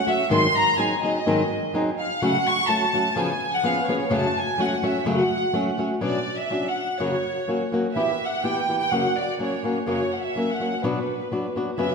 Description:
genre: mexican folk, mariachi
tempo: 126 BPM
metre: 2/4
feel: straight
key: F# minor, B harmonic minor from 6.0 s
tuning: A4 = 440 Hz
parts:
  - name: warm studio violin section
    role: melody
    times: 0.0-11.9 s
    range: B4 to C#6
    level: -24 LUFS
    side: right 1 dB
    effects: none
  - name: flamenco guitar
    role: accompaniment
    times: 0.1-11.9 s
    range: F#2 to G#4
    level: -24 LUFS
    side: left 1 dB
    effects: none
room: wet scoring stage reverb, RT60 1.6 s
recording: none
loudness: -21 LUFS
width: side -4 dB against mid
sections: 0.0-6.0 A section; 6.0-11.9 B section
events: none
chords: 0.3 G#7; 2.2 F#m/C#; 3.2 C#7; 4.1 F#m; 6.0 Bmadd9; 7.0 F#; 8.0 Em; 8.9 F#; 10.8 Bm

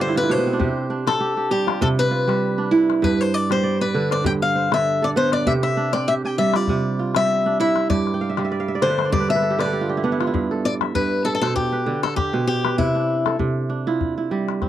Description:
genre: west african traditional, West African string and xylophone music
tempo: 98 BPM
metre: 4/4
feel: swing 55% on 16ths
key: C major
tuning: A4 = 439 Hz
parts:
  - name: picked swing-style acoustic guitar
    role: melody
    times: 0.0-13.4 s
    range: E4 to G5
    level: -22 LUFS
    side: left 4 dB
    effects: none
  - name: kora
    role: arpeggios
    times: 0.0-14.7 s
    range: G2 to G5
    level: -21 LUFS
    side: right 3 dB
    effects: none
  - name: calabash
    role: percussion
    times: 0.6-14.7 s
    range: none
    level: -26 LUFS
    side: left 7 dB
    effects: none
room: little or no reverb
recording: dry, close 1970s-style studio recording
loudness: -18 LUFS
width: side -12 dB against mid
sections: 0.0-10.3 A section; 10.3-14.7 B section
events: kora fill 0.0-0.6, 8.1-10.3; steel-string acoustic guitar solo 0.0-10.3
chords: 0.0 G; 0.6 C; 3.0 G; 5.5 C; 7.9 G; 12.8 C

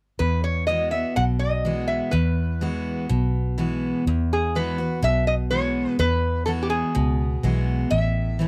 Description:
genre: honky-tonk and classic country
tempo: 125 BPM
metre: 4/4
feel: straight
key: E major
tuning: A4 = 440 Hz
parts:
  - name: lap resonator guitar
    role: melody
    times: 0.2-8.5 s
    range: G4 to F#5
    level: -28 LUFS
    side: equal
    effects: none
  - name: picked steel-string acoustic guitar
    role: accompaniment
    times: 0.2-8.5 s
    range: E2 to F#4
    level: -29 LUFS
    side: equal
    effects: none
  - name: vintage muted fingered electric bass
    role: bass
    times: 0.2-8.5 s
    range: A1 to E2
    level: -26 LUFS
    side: equal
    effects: none
room: light reverb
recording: dry, close 1970s-style studio recording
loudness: -23 LUFS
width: mono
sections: 0.2-4.1 A section; 4.1-8.5 B section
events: none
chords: 0.2 Eadd9; 7.9 A

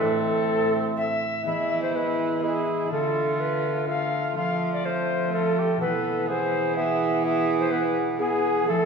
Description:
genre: classical, renaissance-style consort dance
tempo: 124 BPM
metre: 3/4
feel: straight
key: unclear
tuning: A4 = 438 Hz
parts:
  - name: mellow alto recorder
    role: melody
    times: 0.0-8.9 s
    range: G#4 to F5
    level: -26 LUFS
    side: left 1 dB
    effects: none
  - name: warm cor anglais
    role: second line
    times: 0.0-8.9 s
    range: C4 to A4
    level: -29 LUFS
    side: right 6 dB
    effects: none
  - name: concert harp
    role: accompaniment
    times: 0.0-8.9 s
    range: A2 to A4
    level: -33 LUFS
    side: left 4 dB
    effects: none
  - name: warm bassoon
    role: accompaniment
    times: 0.0-8.9 s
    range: G#3 to B3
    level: -30 LUFS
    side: left 2 dB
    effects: none
  - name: rich cello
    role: bass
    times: 0.0-8.9 s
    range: A2 to F3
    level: -30 LUFS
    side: right 3 dB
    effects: none
room: wet recital hall reverb, RT60 1.3 s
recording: heard from further back in the room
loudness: -22 LUFS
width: side -5 dB against mid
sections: 0.0-1.5 A section; 1.5-8.9 B section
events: none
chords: 0.0 Am; 1.5 E; 2.9 Dm; 4.4 F; 5.8 Esus4; 6.3 E

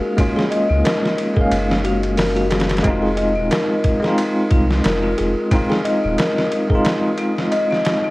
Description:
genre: trip hop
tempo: 90 BPM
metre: 4/4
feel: swing 55% on 16ths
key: unclear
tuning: A4 = 442 Hz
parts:
  - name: bell-like tine electric piano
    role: accompaniment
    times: 0.0-8.1 s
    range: Ab3 to F5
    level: -20 LUFS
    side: equal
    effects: tremolo, tape echo
  - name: wind-like tuned noise texture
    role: texture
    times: 0.0-8.1 s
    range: Eb4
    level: -33 LUFS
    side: right 2 dB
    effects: none
  - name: music box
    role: arpeggios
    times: 0.2-8.1 s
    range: Eb4 to Eb5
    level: -21 LUFS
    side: left 1 dB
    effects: vintage 12-bit sampler grit, ping-pong delay
  - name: boom bap sampler-style drum kit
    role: drums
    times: 0.2-8.0 s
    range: hi-hat, kick drum, ride cymbal, snare drum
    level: -21 LUFS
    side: equal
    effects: none
  - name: soft dub sub bass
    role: bass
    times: 0.7-6.2 s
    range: Eb1 to Db2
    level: -22 LUFS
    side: equal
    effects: none
room: light reverb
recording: worn, warbling old tape, cassette tape, vinyl crackle, warbly pitch drift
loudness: -15 LUFS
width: side -20 dB against mid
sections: 0.0-8.1 A section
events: kick drops out 6.8-8.1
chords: 0.0 Gbmaj7; 2.8 Fm7

